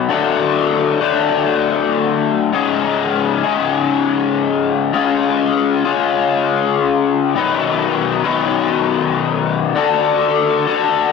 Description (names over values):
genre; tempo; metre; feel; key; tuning
rock; 99 BPM; 4/4; straight; unclear; A4 = 445 Hz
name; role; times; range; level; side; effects
raw garage guitar; solo; 0.0-11.1 s; G#2 to B4; -14 LUFS; left 7 dB; overdrive, flanger
room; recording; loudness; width
light reverb; none; -14 LUFS; side -4 dB against mid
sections
0.0-11.1 A section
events
none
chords
0.1 D; 2.5 G#sus4; 4.9 C#; 7.4 B; 9.8 D